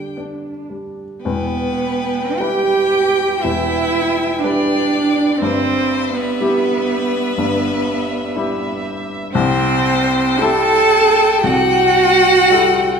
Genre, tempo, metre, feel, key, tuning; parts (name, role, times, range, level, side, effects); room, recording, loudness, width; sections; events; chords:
classical, slow romantic movement for piano quartet; 50-62 BPM; 4/4; rubato; E minor; A4 = 440 Hz
clear violin; melody; 0.0-13.0 s; B4 to A5; -20 LUFS; left 8 dB
clear cello; second line; 0.0-13.0 s; B3 to A4; -16 LUFS; right 4 dB
warm baby grand piano; accompaniment; 0.0-13.0 s; E1 to B4; -21 LUFS; left 2 dB
rich viola; accompaniment; 0.2-13.0 s; B3 to G5; -24 LUFS; right 1 dB
wet recital hall reverb, RT60 1.4 s; minimal, uncompressed stereo recording; -13 LUFS; side -6 dB against mid
0.0-1.2 A section; 1.2-13.0 B section
0.0 G; 1.2 Em; 5.4 Em/G; 9.3 Am7/C